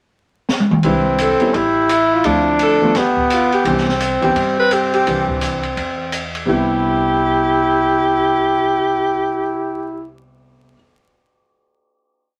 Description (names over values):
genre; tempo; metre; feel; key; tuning
jazz, small-group swing and bop; 170 BPM; 4/4; swing 62% on 8ths; C major; A4 = 439 Hz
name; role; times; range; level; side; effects
open jazz drum kit; drums; 0.5-6.4 s; hi-hat, kick drum, ride cymbal, snare drum, toms; -24 LUFS; equal; none
mellow trumpet; second line; 0.8-10.1 s; B3 to E4; -20 LUFS; equal; none
warm baby grand piano; accompaniment; 0.8-10.8 s; C3 to B4; -24 LUFS; equal; none
upright bass; bass; 0.8-10.7 s; G1 to G2; -31 LUFS; equal; none
clear alto saxophone; melody; 1.2-10.1 s; E4 to B4; -20 LUFS; equal; none
room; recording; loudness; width
moderate studio reverb, RT60 0.5 s; vinyl crackle; -17 LUFS; mono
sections
0.0-0.8 pickup bar; 0.8-6.5 A section; 6.5-9.3 final chord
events
drum fill 0.5-0.8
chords
0.0 N.C.; 0.8 Cmaj9; 1.5 A5; 2.2 Dm7; 2.9 G; 3.7 Cmaj9